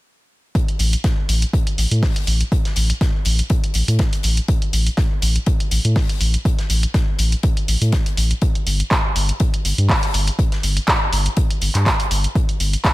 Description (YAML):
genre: acid house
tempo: 122 BPM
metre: 4/4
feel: swing 54% on 16ths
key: unclear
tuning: A4 = 444 Hz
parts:
  - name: big rock drum kit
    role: drums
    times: 0.6-12.9 s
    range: hi-hat, snare drum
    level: -32 LUFS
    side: left 5 dB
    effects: sidechain pumping on hats, high-pass filter on hats, high-pass filter on snare, high-pass filter on room
  - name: electronic kick drum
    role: drums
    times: 0.6-12.9 s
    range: none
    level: -19 LUFS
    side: equal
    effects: none
  - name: punchy analog drum machine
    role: drums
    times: 0.7-12.9 s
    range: handclaps, hi-hat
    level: -22 LUFS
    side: right 1 dB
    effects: none
  - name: saturated sub bass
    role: bass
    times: 0.8-12.8 s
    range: G1 to A2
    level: -18 LUFS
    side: equal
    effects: sidechain pumping
room: little or no reverb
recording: none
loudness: -16 LUFS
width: side -18 dB against mid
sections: 0.6-12.9 A section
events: none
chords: none